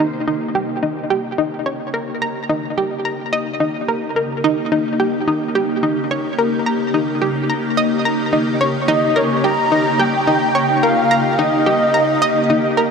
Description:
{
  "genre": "ambient, sequencer-driven space music",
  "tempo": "108 BPM",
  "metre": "4/4",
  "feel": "straight",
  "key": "unclear",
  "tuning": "A4 = 440 Hz",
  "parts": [
    { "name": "evolving wavetable pad", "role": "sustained chords", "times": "0.0-12.9 s", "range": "Db3 to G4", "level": "-21 LUFS", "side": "left 1 dB", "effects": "ensemble chorus, built-in reverb, phaser" },
    { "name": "analog pluck", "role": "riff", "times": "0.0-12.9 s", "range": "Eb4 to Bb5", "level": "-19 LUFS", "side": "equal", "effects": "chorus, tape echo" },
    { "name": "breathy flute-like synth lead", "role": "melody", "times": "8.9-12.9 s", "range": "Db5 to Bb5", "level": "-16 LUFS", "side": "equal", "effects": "ensemble chorus, tape echo" }
  ],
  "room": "wet huge ambient reverb, RT60 8.2 s",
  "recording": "none",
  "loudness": "-15 LUFS",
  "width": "side -6 dB against mid",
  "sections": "0.0-12.9 A section",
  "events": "fade-in on ambient pad 0.0-12.9",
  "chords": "0.0 Eb7",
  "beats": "0.55 1.10 1.66 | 2.22 2.77 3.33 3.88 | 4.44 4.99 5.55 6.11 | 6.66 7.22 7.77 8.33 | 8.88 9.44 9.99 10.55 | 11.11 11.66 12.22 12.77"
}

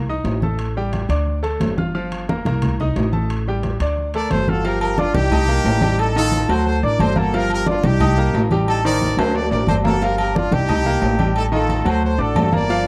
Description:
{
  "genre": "latin, salsa",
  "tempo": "178 BPM",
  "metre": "4/4",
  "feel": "straight",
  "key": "G minor",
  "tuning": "A4 = 440 Hz",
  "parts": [
    { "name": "bright grand piano", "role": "accompaniment", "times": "0.0-12.9 s", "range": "Eb3 to F6", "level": "-26 LUFS", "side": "equal", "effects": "none" },
    { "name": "upright bass", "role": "bass", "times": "0.0-12.9 s", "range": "G1 to D2", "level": "-23 LUFS", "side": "equal", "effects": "none" },
    { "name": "congas", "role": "percussion", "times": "0.1-12.9 s", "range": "none", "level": "-26 LUFS", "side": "equal", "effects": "none" },
    { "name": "timbales and agogo bells", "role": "percussion", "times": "0.2-12.9 s", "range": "none", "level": "-28 LUFS", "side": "equal", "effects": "none" },
    { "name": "brilliant horn section", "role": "melody", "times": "4.2-12.9 s", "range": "D4 to D5", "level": "-25 LUFS", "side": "equal", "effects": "none" }
  ],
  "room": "small room reverb",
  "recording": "dry, close 1970s-style studio recording",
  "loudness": "-19 LUFS",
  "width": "mono",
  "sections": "0.0-4.6 A section; 4.6-12.9 B section",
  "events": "drum fill 9.2-10.0",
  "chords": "0.0 Cm; 0.6 A7sus4; 1.3 D5; 1.9 Gm7; 2.6 Cm7; 3.3 A7sus4; 4.0 D; 4.6 G5; 5.3 Cm7; 6.0 F13b9/A; 6.7 D; 7.3 G5; 8.0 Cm7; 8.7 Am7b5; 9.3 D; 10.0 G5; 10.7 Cm7; 11.4 F13b9/A; 12.0 D",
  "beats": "0.26 | 0.59 0.93 1.27 1.61 | 1.95 2.28 2.62 2.96 | 3.30 3.63 3.97 4.31 | 4.64 4.98 5.32 5.66 | 5.99 6.33 6.66 7.00 | 7.33 7.67 8.01 8.34 | 8.68 9.01 9.35 9.68 | 10.02 10.35 10.69 11.02 | 11.36 11.69 12.03 12.37 | 12.70"
}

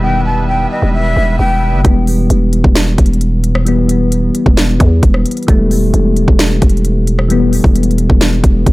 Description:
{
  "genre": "hip hop, trap",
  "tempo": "132 BPM",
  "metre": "4/4",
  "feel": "half-time",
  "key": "E harmonic minor",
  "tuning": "A4 = 436 Hz",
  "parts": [
    { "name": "breathy jazz flute", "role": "melody", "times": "0.0-1.8 s", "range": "D#5 to A5", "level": "-17 LUFS", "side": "left 1 dB", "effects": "low-pass filter, tape echo" },
    { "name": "soft electric-piano-like synth keys", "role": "accompaniment", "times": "0.0-8.7 s", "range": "D#3 to E4", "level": "-16 LUFS", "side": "left 2 dB", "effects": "chorus, tremolo, low-pass filter, tape echo" },
    { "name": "musette accordion", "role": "sustained chords", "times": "0.0-1.8 s", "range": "G3 to E5", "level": "-24 LUFS", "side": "right 1 dB", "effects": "low-pass filter" },
    { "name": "growling 808-style bass", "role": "bass", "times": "0.0-8.7 s", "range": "E1 to E2", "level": "-13 LUFS", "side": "equal", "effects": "none" },
    { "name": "trap drum kit", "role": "drums", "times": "1.8-8.7 s", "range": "hi-hat, kick drum, rim click, snare drum", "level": "-12 LUFS", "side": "equal", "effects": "none" }
  ],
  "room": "little or no reverb",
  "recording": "echo-heavy mix",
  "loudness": "-9 LUFS",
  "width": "side -19 dB against mid",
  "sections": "0.0-1.8 A section; 1.8-8.7 B section",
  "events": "none",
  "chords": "0.0 Em",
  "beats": "| 0.03 0.48 0.94 1.39 | 1.85 2.30 2.75 3.21 | 3.66 4.12 4.57 5.03 | 5.48 5.94 6.39 6.85 | 7.30 7.75 8.21 8.66"
}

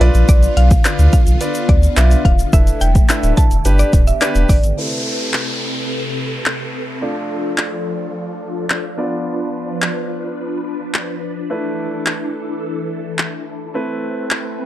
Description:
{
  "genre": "dance-pop",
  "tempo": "107 BPM",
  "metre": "4/4",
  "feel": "straight",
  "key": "A minor",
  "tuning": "A4 = 440 Hz",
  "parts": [
    { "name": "clear grand piano", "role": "accompaniment", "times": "0.0-14.7 s", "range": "A3 to E5", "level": "-24 LUFS", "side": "right 1 dB", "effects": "sidechain pumping, low-pass filter" },
    { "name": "phased string machine", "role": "sustained chords", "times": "0.0-14.7 s", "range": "C3 to B4", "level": "-24 LUFS", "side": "left 1 dB", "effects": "ensemble chorus, phaser, sidechain pumping, low-pass filter" },
    { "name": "warm sub bass", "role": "bass", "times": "0.0-4.7 s", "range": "D1 to D2", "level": "-13 LUFS", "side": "equal", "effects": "sidechain pumping" },
    { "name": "deep house drum kit", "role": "drums", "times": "0.0-14.4 s", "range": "handclaps, hi-hat, kick drum", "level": "-14 LUFS", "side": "equal", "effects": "none" },
    { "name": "egg shaker", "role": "percussion", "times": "0.1-4.8 s", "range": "none", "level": "-31 LUFS", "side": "left 3 dB", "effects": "none" },
    { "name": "mallet-like synth pluck", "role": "melody", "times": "0.3-4.6 s", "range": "D5 to A5", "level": "-24 LUFS", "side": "equal", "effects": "chorus, sidechain pumping, tape echo" },
    { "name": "downlifter", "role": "sound effects", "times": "4.8-9.3 s", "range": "none", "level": "-26 LUFS", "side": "equal", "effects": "none" }
  ],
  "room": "little or no reverb",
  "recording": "dry, gritty hardware recording",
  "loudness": "-14 LUFS",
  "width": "side -14 dB against mid",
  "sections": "0.0-4.8 A section; 4.8-14.7 B section",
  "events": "drop 0.0-4.8; filter sweep 4.8-14.7",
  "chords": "0.0 Bdim; 2.5 E7sus4; 3.7 G; 4.8 Amadd9; 7.0 Dm; 9.0 Bdim; 11.5 E7sus4; 13.7 Amadd9",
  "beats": "| 0.29 0.85 1.41 1.97 | 2.53 3.09 3.65 4.21 | 4.77 5.33 5.89 6.46 | 7.02 7.58 8.14 8.70 | 9.26 9.82 10.38 10.94 | 11.50 12.06 12.62 13.19 | 13.75 14.31"
}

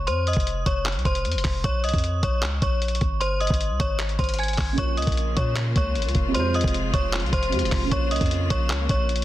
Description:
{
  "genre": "hip hop, trap",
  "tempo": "153 BPM",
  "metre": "4/4",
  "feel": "half-time",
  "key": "Bb minor",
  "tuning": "A4 = 440 Hz",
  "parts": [
    { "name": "metallic FM bell", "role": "melody", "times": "0.0-9.2 s", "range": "C5 to Ab6", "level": "-27 LUFS", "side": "left 1 dB", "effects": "chorus, low-pass filter, tape echo" },
    { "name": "warm 808-style bass", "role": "bass", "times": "0.0-9.2 s", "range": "F1 to Bb2", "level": "-26 LUFS", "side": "equal", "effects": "none" },
    { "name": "lo-fi sampler-style drum kit", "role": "drums", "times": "0.1-9.2 s", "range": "handclaps, hi-hat, kick drum", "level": "-25 LUFS", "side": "equal", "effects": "soft clipping on snare" },
    { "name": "dark baby grand piano", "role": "accompaniment", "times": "4.7-9.2 s", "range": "C3 to Db5", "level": "-30 LUFS", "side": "right 5 dB", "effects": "low-pass filter" },
    { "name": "clear studio string section", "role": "sustained chords", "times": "4.8-9.2 s", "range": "C3 to F4", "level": "-33 LUFS", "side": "left 1 dB", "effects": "none" }
  ],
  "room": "digital ambience",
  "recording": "dense, heavily limited modern master",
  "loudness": "-21 LUFS",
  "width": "side -14 dB against mid",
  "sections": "0.0-9.2 A section",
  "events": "none",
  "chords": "0.1 F5; 1.6 Bbm; 3.2 Ab; 4.8 Bbm; 6.3 Fm; 7.9 Bbm",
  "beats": "| 0.07 0.47 0.86 1.25 | 1.64 2.03 2.43 2.82 | 3.21 3.60 4.00 4.39 | 4.78 5.17 5.56 5.96 | 6.35 6.74 7.13 7.52 | 7.92 8.31 8.70 9.09"
}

